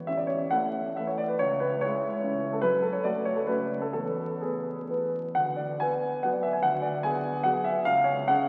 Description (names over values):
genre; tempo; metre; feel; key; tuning
classical, romantic triple-time dance for piano with dotted rhythms; 122-160 BPM; 3/4; rubato; A major; A4 = 442 Hz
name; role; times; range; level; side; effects
warm grand piano; solo; 0.1-8.5 s; A1 to G#5; -28 LUFS; equal; none
room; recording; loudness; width
wet cathedral reverb, RT60 4.4 s; very old 78 rpm record, vinyl crackle; -28 LUFS; mono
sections
0.1-8.5 A section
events
none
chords
0.1 A5; 1.4 C#m; 2.6 F#m; 3.9 E; 5.3 Bm/D; 7.9 C#5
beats
| 0.07 0.51 0.97 | 1.39 1.82 2.24 | 2.63 3.05 3.48 | 3.94 4.42 4.89 | 5.34 5.80 6.24 | 6.64 7.04 7.46 | 7.86 8.28